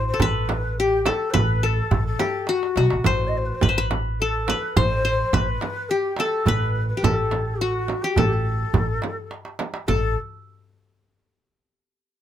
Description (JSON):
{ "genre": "Arabic maqam ensemble", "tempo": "105 BPM", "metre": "3/4", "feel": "straight", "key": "unclear", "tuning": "A4 = 439 Hz", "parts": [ { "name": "qanun", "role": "melody", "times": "0.0-10.1 s", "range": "E4 to C5", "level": "-24 LUFS", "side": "left 3 dB", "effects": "none" }, { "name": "breathy reedy ney", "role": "second line", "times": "0.0-10.1 s", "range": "F#4 to D#5", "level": "-28 LUFS", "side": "left 2 dB", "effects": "none" }, { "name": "upright bass", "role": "bass", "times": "0.0-10.1 s", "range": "A1 to B1", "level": "-24 LUFS", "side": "right 1 dB", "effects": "none" }, { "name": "darbuka", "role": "percussion", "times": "0.2-10.1 s", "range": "none", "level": "-27 LUFS", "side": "right 2 dB", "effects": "none" }, { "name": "frame drum", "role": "percussion", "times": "0.2-10.1 s", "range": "none", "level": "-28 LUFS", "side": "right 5 dB", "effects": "none" } ], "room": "light reverb", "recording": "close, detailed microphones", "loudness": "-20 LUFS", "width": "side -10 dB against mid", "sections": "0.0-9.9 A section; 9.9-11.6 B section", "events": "drum fill 2.5-3.1, 9.3-9.9", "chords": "none" }